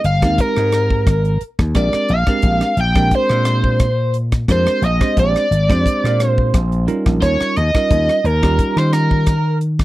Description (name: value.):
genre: electric jazz fusion.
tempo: 88 BPM.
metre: 4/4.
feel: swing 53% on 16ths.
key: unclear.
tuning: A4 = 439 Hz.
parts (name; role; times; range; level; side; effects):
vintage slap bass; bass; 0.0-9.8 s; G1 to Eb3; -17 LUFS; equal; none.
crisp fusion drum kit; drums; 0.0-9.8 s; hi-hat, kick drum, rim click; -19 LUFS; equal; none.
overdriven synth lead; melody; 0.1-9.6 s; Bb4 to G5; -19 LUFS; equal; none.
overdriven electric guitar; second line; 0.1-9.6 s; Bb4 to G5; -25 LUFS; equal; none.
bell-like tine electric piano; accompaniment; 0.2-9.3 s; G3 to C5; -21 LUFS; right 3 dB; medium stereo tremolo.
room: little or no reverb.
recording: dry, close 1970s-style studio recording.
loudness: -13 LUFS.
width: side -17 dB against mid.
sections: 0.0-9.8 A section.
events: none.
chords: 0.0 Abmaj7; 1.8 Bb13; 6.9 Eb9.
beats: 0.39 1.07 | 1.75 2.44 3.12 3.80 | 4.49 5.17 5.85 6.54 | 7.22 7.90 8.59 9.27.